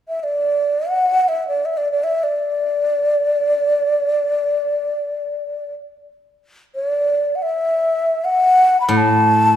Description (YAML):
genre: chinese traditional, Chinese chamber ensemble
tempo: free time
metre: none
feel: none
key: D gong mode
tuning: A4 = 435 Hz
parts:
  - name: breathy low xiao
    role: melody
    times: 0.1-9.6 s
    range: D5 to B5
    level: -16 LUFS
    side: equal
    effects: none
  - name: steel-string zither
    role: accompaniment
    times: 8.9-9.6 s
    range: A2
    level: -15 LUFS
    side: right 1 dB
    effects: none
room: wet recital hall reverb, RT60 1.5 s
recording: none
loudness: -16 LUFS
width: side -10 dB against mid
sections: 0.0-9.6 A section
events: none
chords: none